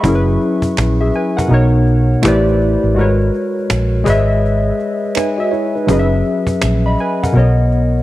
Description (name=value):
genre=lo-fi hip hop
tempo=82 BPM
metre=4/4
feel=swing 62% on 16ths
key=unclear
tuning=A4 = 436 Hz
part: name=warm analog keys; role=accompaniment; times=0.0-8.0 s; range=B2 to C#6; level=-14 LUFS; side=left 1 dB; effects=chorus, cassette tape, low-pass filter
part: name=vintage muted fingered electric bass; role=bass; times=0.0-8.0 s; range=F#1 to B1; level=-15 LUFS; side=right 1 dB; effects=none
part: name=cajon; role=drums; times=0.0-8.0 s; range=none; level=-21 LUFS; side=equal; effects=none
part: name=finger snaps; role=percussion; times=0.8-6.8 s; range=none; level=-29 LUFS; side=right 9 dB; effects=none
part: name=mellow tine electric piano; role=second line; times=5.2-6.1 s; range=D#4 to D#5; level=-21 LUFS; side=right 5 dB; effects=slow stereo tremolo, low-pass filter, tape echo
room=light reverb, small room ambience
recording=none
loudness=-12 LUFS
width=side -16 dB against mid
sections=0.0-8.0 A section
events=none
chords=0.0 F#7sus4; 1.5 Bmaj9; 2.2 Am11; 3.0 G#m11; 4.1 C#m9/G#; 5.9 F#7sus4; 7.4 Bmaj9